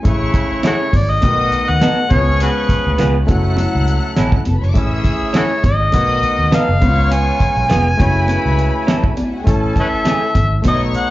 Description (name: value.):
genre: lush 1970s-style soul.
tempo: 102 BPM.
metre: 4/4.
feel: swing 54% on 16ths.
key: A major.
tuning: A4 = 436 Hz.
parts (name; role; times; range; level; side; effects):
warm studio string section; second line; 0.0-11.1 s; D4 to F#6; -27 LUFS; left 2 dB; plate reverb, slapback echo.
overdriven reed electric piano; accompaniment; 0.0-11.1 s; G#3 to C#5; -23 LUFS; left 2 dB; none.
clear horn section; stabs; 0.0-11.1 s; B2 to A4; -25 LUFS; right 1 dB; plate reverb, slapback echo.
vintage muted fingered electric bass; bass; 0.1-11.0 s; E#1 to D#2; -17 LUFS; equal; none.
damped 70s drum kit; drums; 0.1-11.1 s; hi-hat, kick drum, snare drum; -16 LUFS; equal; none.
electric guitar through a small old amp; riff; 0.6-10.2 s; A3 to A4; -20 LUFS; right 4 dB; lush chorus, slapback echo.
congas; percussion; 0.6-10.8 s; none; -25 LUFS; right 1 dB; none.
overdriven harmonica; melody; 0.7-11.1 s; F#4 to G#5; -18 LUFS; left 1 dB; tape echo, plate reverb, slapback echo.
room: light reverb.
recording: live gig heard through the venue's PA, club reverb, nothing above 7.6 kHz.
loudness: -13 LUFS.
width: side -16 dB against mid.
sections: 0.0-11.1 A section.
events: none.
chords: 0.1 Amaj7; 1.2 B7; 2.1 C#7; 3.3 F#m7; 4.8 Amaj7; 5.9 B7; 6.8 C#7; 8.0 F#m7; 9.5 Amaj7.